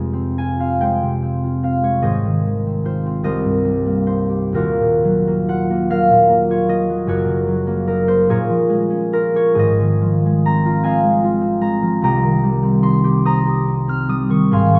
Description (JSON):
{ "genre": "classical, solo harp piece", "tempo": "48 BPM (dotted quarters)", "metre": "6/8", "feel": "uneven beats, rubato", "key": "unclear", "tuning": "A4 = 440 Hz", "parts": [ { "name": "concert harp", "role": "solo", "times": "0.0-14.8 s", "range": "Eb1 to F6", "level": "-17 LUFS", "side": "equal", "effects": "none" } ], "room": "wet recital hall reverb, RT60 1.5 s", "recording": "none", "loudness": "-17 LUFS", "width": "mono", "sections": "0.0-14.8 A section", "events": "none", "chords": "0.0 Fmadd9; 2.1 Ab6; 3.2 Cm7; 4.5 Ebmadd9; 7.1 Gb6; 8.3 Bbm7; 9.6 Ab6; 12.0 Cm7", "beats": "0.82 | 2.05 3.25 | 4.53 5.89 | 7.08 8.30 | 9.56 10.85 | 12.04 13.29 | 14.54" }